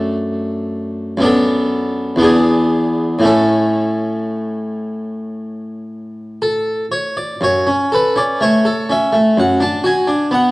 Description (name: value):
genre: classical, baroque-style suite movement for harpsichord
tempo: 57-64 BPM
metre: 4/4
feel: rubato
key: A major, F# minor from 7.4 s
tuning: A4 = 440 Hz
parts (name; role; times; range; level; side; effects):
- harpsichord; solo; 0.0-10.5 s; E2 to A5; -14 LUFS; equal; none
room: moderate recital hall reverb, RT60 1.8 s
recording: worn, warbling old tape, cassette tape, warbly pitch drift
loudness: -14 LUFS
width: side -21 dB against mid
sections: 0.0-7.4 A section; 7.4-10.5 A section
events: none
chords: 0.0 D/F#; 1.3 Bm7/F#; 2.2 E7; 3.3 A; 7.4 F#m; 9.4 Bm/F#